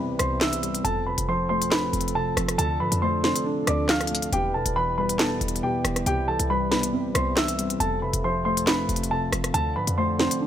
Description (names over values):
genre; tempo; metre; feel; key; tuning
hip hop, drill; 138 BPM; 4/4; half-time; unclear; A4 = 440 Hz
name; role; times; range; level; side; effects
muted felt-like synth keys; accompaniment; 0.0-10.5 s; E2 to D4; -28 LUFS; left 1 dB; chorus, low-pass filter
mellow French horn section; sustained chords; 0.0-10.5 s; C3 to B4; -33 LUFS; right 3 dB; none
short 808-style bass; bass; 0.0-10.3 s; D1 to A2; -30 LUFS; equal; none
dark baby grand piano; melody; 0.2-10.4 s; G4 to F6; -27 LUFS; right 1 dB; low-pass filter
drill drum kit; drums; 0.2-10.4 s; handclaps, hi-hat, rim click, snare drum; -25 LUFS; equal; none
room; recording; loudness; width
light reverb; none; -22 LUFS; side -10 dB against mid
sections
0.0-10.5 A section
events
none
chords
0.0 Cmaj7; 0.8 F; 2.6 Dm7; 4.3 Em; 6.1 Cmaj7; 7.8 F; 9.5 Dm7